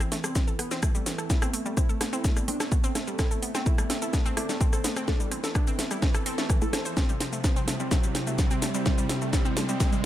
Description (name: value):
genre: melodic techno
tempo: 127 BPM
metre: 4/4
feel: straight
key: A minor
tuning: A4 = 440 Hz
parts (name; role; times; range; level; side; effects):
- soft supersaw; melody; 0.0-10.0 s; C3 to A4; -35 LUFS; equal; vintage 12-bit sampler grit, sidechain pumping, low-pass filter, digital delay
- lush unison pad; sustained chords; 0.2-10.1 s; C3 to A4; -36 LUFS; equal; chorus, sidechain pumping
- wide unison pluck; arpeggios; 0.0-10.0 s; E3 to C5; -35 LUFS; equal; sidechain pumping, tape echo
- filtered dub chord stab; stabs; 0.0-10.1 s; C3 to A4; -36 LUFS; equal; phaser, wide subtle chorus, sidechain pumping, tape echo
- house drum kit; drums; 0.0-10.0 s; hi-hat, rim click, shaker, snare drum; -31 LUFS; equal; studio reverb, sidechain pumping on perc, sidechain pumping on hats
- riser; sound effects; 0.0-10.1 s; none; -39 LUFS; right 2 dB; none
- electronic kick drum; drums; 0.4-9.9 s; none; -25 LUFS; equal; studio reverb
room: light reverb, digital ambience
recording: none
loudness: -24 LUFS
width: side -13 dB against mid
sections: 0.0-10.1 A section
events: build-up 0.0-10.1; drum fill 0.0-10.1; riser 0.0-10.1; filter sweep on supersaw synth 0.0-10.1; filter sweep on synth stab 0.0-10.1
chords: 0.0 Amadd9; 7.0 C